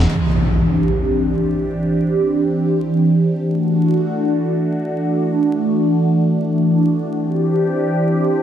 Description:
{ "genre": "breakbeat", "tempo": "free time", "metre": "none", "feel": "none", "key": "D mixolydian", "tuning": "A4 = 441 Hz", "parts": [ { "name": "phased analog pad", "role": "sustained chords", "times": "0.0-8.4 s", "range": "E3 to G4", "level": "-15 LUFS", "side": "equal", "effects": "phaser, chorus, vintage 12-bit sampler grit" }, { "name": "impact", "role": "sound effects", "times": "0.1-1.9 s", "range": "none", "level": "-20 LUFS", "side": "equal", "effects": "none" } ], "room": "wet studio reverb, RT60 0.5 s", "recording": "dense, heavily limited modern master, vinyl crackle", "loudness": "-15 LUFS", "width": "side -9 dB against mid", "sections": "0.1-8.4 A section", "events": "impact 0.1-1.9", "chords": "0.1 D9sus4; 3.4 E9sus4; 7.2 D9sus4" }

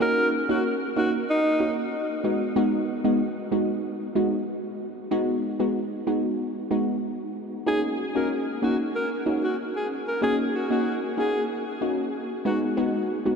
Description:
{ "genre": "afrobeats", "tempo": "94 BPM", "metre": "4/4", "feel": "straight", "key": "Eb minor", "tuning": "A4 = 440 Hz", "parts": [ { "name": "clear alto saxophone", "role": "melody", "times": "0.0-1.7, 7.7-12.6 s", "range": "Eb4 to Bb4", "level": "-27 LUFS", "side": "equal", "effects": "ping-pong delay" }, { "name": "glassy wavetable pluck", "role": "accompaniment", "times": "0.0-13.4 s", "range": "Ab3 to Gb4", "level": "-25 LUFS", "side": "equal", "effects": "chorus" } ], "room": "wet huge ambient reverb, RT60 8.0 s", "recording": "dreamy mix soaked in reverb", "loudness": "-23 LUFS", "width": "side -6 dB against mid", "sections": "0.0-7.7 A section; 7.7-13.4 B section", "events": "none", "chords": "0.0 Ebm7; 2.2 Abm7; 7.7 Ebm7; 12.5 Abm7" }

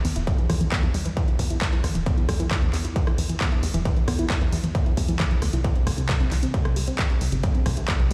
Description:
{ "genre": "uplifting trance", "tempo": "134 BPM", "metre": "4/4", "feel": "straight", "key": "E minor", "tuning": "A4 = 440 Hz", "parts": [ { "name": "unison pluck", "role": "arpeggios", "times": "0.0-8.1 s", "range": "C3 to E4", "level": "-32 LUFS", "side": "equal", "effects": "sidechain pumping, digital delay" }, { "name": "tight sequencer bass", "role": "bass", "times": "0.0-8.1 s", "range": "E1 to E2", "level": "-28 LUFS", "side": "equal", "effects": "sidechain pumping" }, { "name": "punchy analog drum machine", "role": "drums", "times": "0.0-8.1 s", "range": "handclaps, hi-hat, rim click", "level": "-33 LUFS", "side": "equal", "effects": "sidechain pumping on hats" }, { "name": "electronic kick drum", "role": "drums", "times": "0.3-8.0 s", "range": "none", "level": "-25 LUFS", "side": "equal", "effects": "distortion, overdrive" } ], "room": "digital ambience", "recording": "played on a big sound system in a bare room, stone room reverb", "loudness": "-23 LUFS", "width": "mono", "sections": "0.0-8.1 A section", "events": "none", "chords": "0.0 E5; 5.6 C5" }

